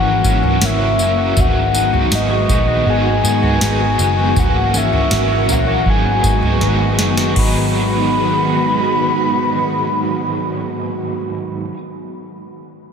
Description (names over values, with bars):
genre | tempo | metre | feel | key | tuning
dream pop | 80 BPM | 4/4 | straight | G# minor | A4 = 440 Hz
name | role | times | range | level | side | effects
soft octave-layered synth lead | melody | 0.0-11.1 s | D#5 to B5 | -19 LUFS | left 1 dB | chorus, ping-pong delay
overdriven electric guitar | accompaniment | 0.0-11.8 s | G#2 to A#4 | -23 LUFS | right 4 dB | tremolo, analog chorus
soft string machine | sustained chords | 0.0-11.1 s | D#3 to F#4 | -21 LUFS | equal | phaser, ensemble chorus
clean electric guitar | arpeggios | 0.0-11.8 s | D#3 to F#4 | -25 LUFS | left 3 dB | wide subtle chorus, ping-pong delay
vintage muted picked electric bass | bass | 0.0-11.7 s | F#1 to G#2 | -19 LUFS | equal | none
booming analog drum machine | drums | 0.2-7.6 s | crash cymbal, kick drum, snare drum, tambourine, toms | -19 LUFS | right 1 dB | none
room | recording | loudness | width
wet cathedral reverb, RT60 5.8 s | dreamy mix soaked in reverb | -13 LUFS | side -6 dB against mid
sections
0.0-7.4 A section; 7.4-10.4 B section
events
drum fill 6.6-7.4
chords
0.0 F#7/G#; 1.4 G#m7; 4.4 F#7/G#; 5.9 G#m7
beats
0.62 | 1.37 2.12 2.87 3.62 | 4.37 5.12 5.87 6.62 | 7.37 8.12 8.87 9.62